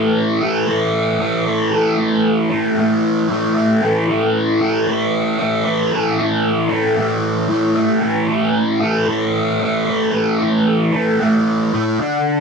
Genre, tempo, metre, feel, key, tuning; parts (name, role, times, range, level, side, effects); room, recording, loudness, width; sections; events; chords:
rock; 114 BPM; 4/4; straight; A4 = 440 Hz
fuzz guitar; solo; 0.0-12.4 s; A2 to D4; -15 LUFS; equal; distortion, phaser
light reverb; dry, close 1970s-style studio recording; -15 LUFS; side -5 dB against mid
0.0-11.7 A section
0.0 A5; 11.7 N.C.